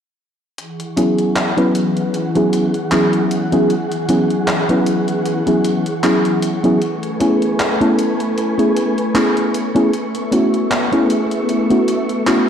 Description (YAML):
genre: vaporwave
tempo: 77 BPM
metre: 4/4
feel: swing 55% on 16ths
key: E major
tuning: A4 = 441 Hz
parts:
  - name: soft string machine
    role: sustained chords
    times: 0.6-12.5 s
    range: E3 to C#6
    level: -21 LUFS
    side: right 1 dB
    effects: ensemble chorus, vintage 12-bit sampler grit
  - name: detuned 8-bit digital drum machine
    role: drums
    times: 0.6-12.4 s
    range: handclaps, hi-hat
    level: -24 LUFS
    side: equal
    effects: none
  - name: mellow FM electric piano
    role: accompaniment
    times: 1.0-12.5 s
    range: F#3 to B4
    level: -15 LUFS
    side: equal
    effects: analog chorus, cassette tape, tape echo
room: moderate huge ambient reverb, RT60 6.8 s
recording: dark, warm production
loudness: -14 LUFS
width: side -8 dB against mid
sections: 0.6-12.5 A section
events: none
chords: 0.6 E69; 6.8 Amaj9; 9.9 B9sus4